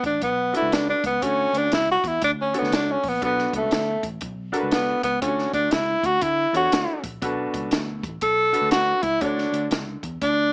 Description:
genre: uptempo 1960s-style soul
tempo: 120 BPM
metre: 4/4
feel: swing 63% on 8ths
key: B minor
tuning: A4 = 439 Hz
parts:
  - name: breathy tenor saxophone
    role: melody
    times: 0.0-10.5 s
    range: A3 to A4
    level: -20 LUFS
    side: equal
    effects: none
  - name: vintage muted picked electric bass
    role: bass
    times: 0.0-10.5 s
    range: A1 to D3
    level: -32 LUFS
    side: equal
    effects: none
  - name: compact cocktail drum kit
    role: drums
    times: 0.0-10.4 s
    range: hi-hat, kick drum, snare drum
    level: -27 LUFS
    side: equal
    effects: none
  - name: warm grand piano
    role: accompaniment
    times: 0.5-10.0 s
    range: B2 to C#5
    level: -28 LUFS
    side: equal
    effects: none
room: moderate club reverb, RT60 0.6 s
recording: small speaker sound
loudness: -20 LUFS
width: side -36 dB against mid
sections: 0.0-10.5 A section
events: tenor saxophone solo 0.0-10.5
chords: 0.0 Bm7; 1.2 Dmaj7; 3.2 Bm7; 5.2 Dmaj7; 7.2 Bm7; 9.2 Dmaj7

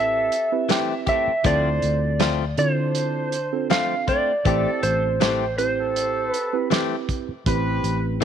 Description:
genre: straight-eighth soul blues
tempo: 80 BPM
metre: 4/4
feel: straight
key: A minor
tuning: A4 = 439 Hz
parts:
  - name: electric slide guitar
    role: melody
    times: 0.0-6.7 s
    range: C5 to F5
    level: -23 LUFS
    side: right 2 dB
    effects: none
  - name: mellow reed electric piano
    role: accompaniment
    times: 0.0-8.2 s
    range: C4 to C5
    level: -28 LUFS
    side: right 13 dB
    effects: none
  - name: clear horn section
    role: sustained chords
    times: 0.0-8.0 s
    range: C4 to C5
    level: -31 LUFS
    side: left 2 dB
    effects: none
  - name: vintage muted fingered electric bass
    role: bass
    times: 0.0-8.2 s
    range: A1 to D3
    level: -26 LUFS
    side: left 2 dB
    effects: none
  - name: warm soul drum kit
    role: drums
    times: 0.3-8.2 s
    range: hi-hat, kick drum, snare drum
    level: -25 LUFS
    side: right 4 dB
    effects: none
  - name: direct-recorded clean electric guitar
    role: stabs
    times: 0.7-8.2 s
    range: E3 to G4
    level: -26 LUFS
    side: left 14 dB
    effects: none
room: light reverb, small room ambience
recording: 1960s-style stereo with parts hard left and right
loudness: -20 LUFS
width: side -8 dB against mid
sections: 0.0-8.2 A section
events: none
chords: 0.0 Am7; 1.4 Dm7; 4.5 Am7

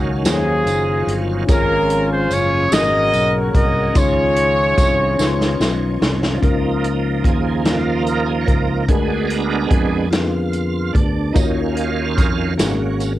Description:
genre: slow gospel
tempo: 49 BPM (dotted quarters)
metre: 6/8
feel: straight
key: Db major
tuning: A4 = 440 Hz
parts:
  - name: clear horn section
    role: melody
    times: 0.0-5.6 s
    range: Db4 to Eb5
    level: -17 LUFS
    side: equal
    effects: cassette tape
  - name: mellow tine electric piano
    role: accompaniment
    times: 0.0-13.2 s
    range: Ab2 to C6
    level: -24 LUFS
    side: left 6 dB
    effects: medium stereo tremolo, cassette tape
  - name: bright tonewheel organ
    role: sustained chords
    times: 0.0-13.1 s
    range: Eb3 to F5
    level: -24 LUFS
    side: right 6 dB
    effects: chorus vibrato, slow rotary speaker, cassette tape
  - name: fingered electric bass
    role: bass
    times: 0.0-13.2 s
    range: Gb1 to F2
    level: -22 LUFS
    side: equal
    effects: none
  - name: swinging big-band drum kit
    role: drums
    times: 0.3-13.2 s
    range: hi-hat, kick drum, snare drum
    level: -19 LUFS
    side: equal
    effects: cassette tape
  - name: tambourine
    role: percussion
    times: 0.3-6.0, 11.4-13.2 s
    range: none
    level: -31 LUFS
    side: right 7 dB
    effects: none
room: light reverb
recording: home recording on cassette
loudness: -15 LUFS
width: side -14 dB against mid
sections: 0.0-6.4 A section; 6.4-13.2 B section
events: drum fill 5.2-6.4; tonewheel organ solo 6.4-13.2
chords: 0.0 Ebm9; 1.5 Db/Ab; 2.7 Ab9sus4; 4.0 Dbmaj9; 6.4 Db69; 8.9 Bb7b9/D; 11.4 Ebm9; 12.6 Ab9sus4

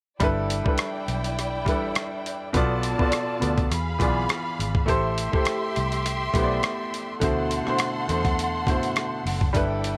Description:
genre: lush 1970s-style soul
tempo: 103 BPM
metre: 4/4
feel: swing 54% on 16ths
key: G major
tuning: A4 = 440 Hz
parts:
  - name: warm studio string section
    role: second line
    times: 0.2-10.0 s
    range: E4 to C6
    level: -32 LUFS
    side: equal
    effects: none
  - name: clear baby grand piano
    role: accompaniment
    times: 0.2-10.0 s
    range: B2 to D5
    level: -29 LUFS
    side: equal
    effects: none
  - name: vintage muted fingered electric bass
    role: bass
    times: 0.2-9.9 s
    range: F#1 to F#2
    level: -31 LUFS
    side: equal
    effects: none
  - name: dusty soul sampler-style drum kit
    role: drums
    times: 0.2-10.0 s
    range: hi-hat, kick drum, rim click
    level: -28 LUFS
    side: equal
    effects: none
room: light reverb, studio ambience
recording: none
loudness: -25 LUFS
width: mono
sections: 0.2-9.5 A section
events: none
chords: 0.2 G69; 2.5 Bm7b5; 3.7 E7b9; 4.9 Am9; 7.2 D13

